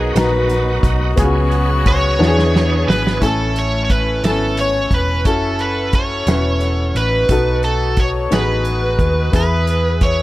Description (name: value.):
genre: slow gospel.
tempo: 59 BPM (dotted quarters).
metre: 6/8.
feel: straight.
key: A major from 3.2 s.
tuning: A4 = 441 Hz.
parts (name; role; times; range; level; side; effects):
edgy saxophone section; melody; 0.0-10.2 s; B3 to C#5; -22 LUFS; left 2 dB; dub echo.
warm upright piano; accompaniment; 0.0-10.2 s; A2 to A#5; -21 LUFS; left 2 dB; none.
bright tonewheel organ; sustained chords; 0.0-3.2 s; E3 to G#4; -25 LUFS; right 3 dB; slow rotary speaker, chorus vibrato.
hollow-body short-scale fingered electric bass; bass; 0.0-10.2 s; E1 to E2; -19 LUFS; equal; none.
natural country drum kit; drums; 0.2-10.2 s; hi-hat, kick drum, snare drum; -19 LUFS; equal; none.
overdriven slide guitar; melody; 1.9-10.2 s; A4 to C#5; -21 LUFS; right 2 dB; dub echo.
room: small room ambience.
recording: echo-heavy mix.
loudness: -14 LUFS.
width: side -17 dB against mid.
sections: 0.0-3.2 A section; 3.2-10.2 B section.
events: drum fill 2.2-3.2.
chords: 0.0 Bmaj7; 1.2 C#7sus4; 2.2 E7; 3.2 Amaj7; 5.3 F#m7; 7.3 B7; 9.3 E.